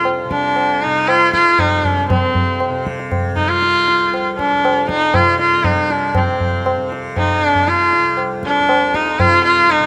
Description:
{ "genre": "indian classical, Hindustani", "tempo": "118 BPM", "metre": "4/4", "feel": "straight", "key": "unclear", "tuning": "A4 = 436 Hz", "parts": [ { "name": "bright sarangi", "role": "melody", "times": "0.0-9.9 s", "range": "C4 to F4", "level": "-16 LUFS", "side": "equal", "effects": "none" }, { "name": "tanpura", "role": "drone", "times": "0.0-9.9 s", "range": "C2 to C3", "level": "-28 LUFS", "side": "equal", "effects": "none" }, { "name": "tabla", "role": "percussion", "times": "0.1-9.9 s", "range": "none", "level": "-22 LUFS", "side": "equal", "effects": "none" } ], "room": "light reverb, studio ambience", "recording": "rough home demo mix", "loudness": "-15 LUFS", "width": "mono", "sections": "0.0-6.2 A section; 6.2-9.9 B section", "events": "none", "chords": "none", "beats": "| 0.05 0.56 1.07 1.58 | 2.09 2.60 3.11 3.62 | 4.13 4.64 5.15 5.65 | 6.16 6.67 7.17 7.68 | 8.18 8.69 9.19 9.70" }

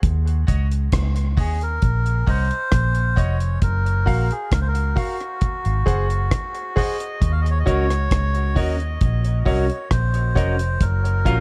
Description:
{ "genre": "dub reggae", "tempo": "67 BPM", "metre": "4/4", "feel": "straight", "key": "Eb dorian", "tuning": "A4 = 440 Hz", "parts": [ { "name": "vintage muted fingered electric bass", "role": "bass", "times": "0.0-11.4 s", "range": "F1 to Eb2", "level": "-22 LUFS", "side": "equal", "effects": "none" }, { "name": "deep reggae drum kit", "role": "drums", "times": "0.0-11.4 s", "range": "hi-hat, kick drum, rim click", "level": "-24 LUFS", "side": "equal", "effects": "none" }, { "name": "bright baby grand piano", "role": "stabs", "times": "0.5-11.4 s", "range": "Gb4 to Gb5", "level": "-32 LUFS", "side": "equal", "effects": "high-pass filter, dub echo" }, { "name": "melodica", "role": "melody", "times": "1.4-11.4 s", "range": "Gb4 to F5", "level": "-29 LUFS", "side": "equal", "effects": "dub echo" }, { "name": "semi-hollow electric guitar", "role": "accompaniment", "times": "7.7-11.4 s", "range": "Db4 to Bb4", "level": "-31 LUFS", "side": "equal", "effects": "vibrato effect, dub echo" } ], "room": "little or no reverb", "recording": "dark, warm production", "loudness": "-21 LUFS", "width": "mono", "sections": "0.0-11.4 A section", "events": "break 0.0-7.2; filter sweep on grand piano 0.0-3.6", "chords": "0.0 Ebm7; 3.6 Gbmaj7; 5.4 Ab7; 7.2 Ebm7; 10.8 Gbmaj7", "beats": "| 0.03 0.93 1.83 2.73 | 3.62 4.52 5.42 6.32 | 7.22 8.12 9.01 9.91 | 10.81" }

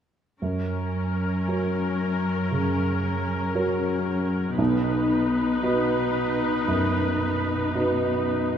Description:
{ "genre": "cinematic", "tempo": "57 BPM", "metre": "4/4", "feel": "rubato", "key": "F# major", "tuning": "A4 = 440 Hz", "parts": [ { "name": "muted studio viola section", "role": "accompaniment", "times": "0.4-8.6 s", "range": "C#4 to B4", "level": "-28 LUFS", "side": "left 2 dB", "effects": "none" }, { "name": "warm grand piano", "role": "accompaniment", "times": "0.4-8.6 s", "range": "B1 to B4", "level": "-26 LUFS", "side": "right 2 dB", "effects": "none" }, { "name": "muted studio cello section", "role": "bass", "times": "0.4-8.6 s", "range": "F#2 to B2", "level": "-28 LUFS", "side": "left 1 dB", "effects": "none" } ], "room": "moderate scoring stage reverb, RT60 2.0 s", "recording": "heard from further back in the room", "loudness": "-22 LUFS", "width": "side -8 dB against mid", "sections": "0.4-8.6 A section", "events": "none", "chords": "0.4 F#; 4.6 B", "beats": "| 0.41 1.48 2.51 3.55 | 4.59 5.63 6.68 7.75" }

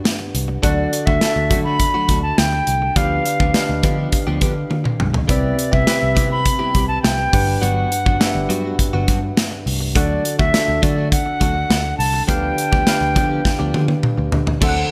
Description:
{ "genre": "1980s-style pop", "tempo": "103 BPM", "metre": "4/4", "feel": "straight", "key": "G major", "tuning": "A4 = 440 Hz", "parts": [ { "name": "bell-like tine electric piano", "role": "accompaniment", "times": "0.0-14.9 s", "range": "G2 to A5", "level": "-26 LUFS", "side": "equal", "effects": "subtle chorus" }, { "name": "direct-recorded clean electric guitar", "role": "riff", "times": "0.0-14.8 s", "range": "F3 to A4", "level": "-30 LUFS", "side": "equal", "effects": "analog chorus, digital delay" }, { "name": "modern studio drum kit", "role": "drums", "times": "0.1-14.8 s", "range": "crash cymbal, hi-hat, kick drum, snare drum, toms", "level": "-21 LUFS", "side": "equal", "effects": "none" }, { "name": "picked electric bass", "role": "bass", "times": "0.3-14.8 s", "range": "G1 to D3", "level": "-24 LUFS", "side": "equal", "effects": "none" }, { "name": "reedy silver concert flute", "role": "melody", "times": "0.6-14.9 s", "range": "D5 to B5", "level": "-24 LUFS", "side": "equal", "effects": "digital delay" } ], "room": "moderate lush hall reverb, RT60 2.2 s", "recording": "bright 1980s-style digital production", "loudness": "-18 LUFS", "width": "mono", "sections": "0.0-14.6 A section", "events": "drum fill 4.7-5.3, 13.4-14.6", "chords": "0.0 Gmaj7; 0.6 D; 3.0 G7/D; 5.3 Cmaj7; 7.3 Gmaj7; 10.0 D; 12.3 G7/D", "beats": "0.05 | 0.64 1.22 1.80 2.38 | 2.96 3.55 4.13 4.71 | 5.29 5.88 6.46 7.04 | 7.62 8.21 8.79 9.37 | 9.96 10.54 11.12 11.70 | 12.29 12.87 13.45 14.03 | 14.62" }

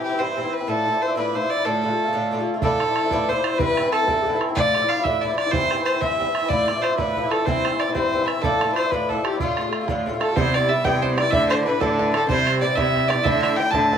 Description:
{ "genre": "celtic folk, Celtic jig", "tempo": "124 BPM (dotted quarters)", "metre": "6/8", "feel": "straight", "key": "D dorian", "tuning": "A4 = 439 Hz", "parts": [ { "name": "clear fiddle", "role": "melody", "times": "0.0-14.0 s", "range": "F4 to A5", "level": "-22 LUFS", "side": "equal", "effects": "none" }, { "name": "Irish bouzouki", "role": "accompaniment", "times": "0.0-14.0 s", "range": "G2 to F4", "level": "-24 LUFS", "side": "equal", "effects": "none" }, { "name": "mellow baroque flute", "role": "second line", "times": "2.6-14.0 s", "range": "F4 to B5", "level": "-29 LUFS", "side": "left 3 dB", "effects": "none" }, { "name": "bodhran", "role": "percussion", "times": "2.6-13.9 s", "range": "none", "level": "-28 LUFS", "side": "right 4 dB", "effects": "none" }, { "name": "bluegrass banjo", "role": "second line", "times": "10.2-14.0 s", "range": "A4 to A5", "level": "-29 LUFS", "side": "right 3 dB", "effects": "none" }, { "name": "clear cello", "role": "bass", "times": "10.4-14.0 s", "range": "C3 to D3", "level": "-24 LUFS", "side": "equal", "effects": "none" } ], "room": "wet small room ambience, RT60 0.5 s", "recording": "heard from further back in the room", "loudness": "-19 LUFS", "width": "side -8 dB against mid", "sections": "0.0-2.6 A section; 2.6-10.4 A section; 10.4-14.0 B section", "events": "none", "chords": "0.0 C; 0.7 Dmadd9; 1.6 Dm; 2.6 Dmadd9; 3.6 C; 4.6 Dmadd9; 5.5 C; 6.5 Dmadd9; 7.5 C; 8.4 Dmadd9; 9.4 Dm; 10.4 Cmaj7; 11.3 Dsus2; 12.3 Cmaj7; 13.2 Dsus2", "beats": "0.18 | 0.67 1.16 | 1.65 2.14 | 2.62 3.11 | 3.60 4.08 | 4.56 5.05 | 5.53 6.02 | 6.50 6.98 | 7.47 7.95 | 8.43 8.92 | 9.40 9.88 | 10.36 10.85 | 11.33 11.81 | 12.29 12.77 | 13.25 13.73" }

